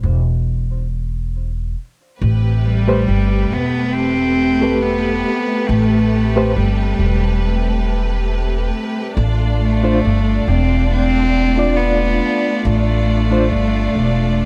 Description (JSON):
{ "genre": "trip hop", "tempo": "69 BPM", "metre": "4/4", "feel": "swing 55% on 16ths", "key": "A minor", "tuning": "A4 = 439 Hz", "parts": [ { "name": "upright bass", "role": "bass", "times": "0.0-14.5 s", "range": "E1 to A1", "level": "-20 LUFS", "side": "equal", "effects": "none" }, { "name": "rich studio string section", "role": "sustained chords", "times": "2.2-14.5 s", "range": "C3 to D5", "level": "-26 LUFS", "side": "equal", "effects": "vintage 12-bit sampler grit" }, { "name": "wind-like tuned noise texture", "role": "texture", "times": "2.8-14.5 s", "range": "A3", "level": "-34 LUFS", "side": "equal", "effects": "built-in reverb" }, { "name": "rich cello", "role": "melody", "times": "2.6-14.5 s", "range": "G3 to C4", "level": "-21 LUFS", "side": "equal", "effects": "tape echo" }, { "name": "bright reed electric piano", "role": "accompaniment", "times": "2.9-13.5 s", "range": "A3 to D5", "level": "-22 LUFS", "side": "equal", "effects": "fast tremolo, tape echo" } ], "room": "studio ambience", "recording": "dark, warm production", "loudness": "-17 LUFS", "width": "mono", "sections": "0.0-14.5 A section", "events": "none", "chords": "0.0 N.C.; 2.2 Am9; 9.2 Dm7" }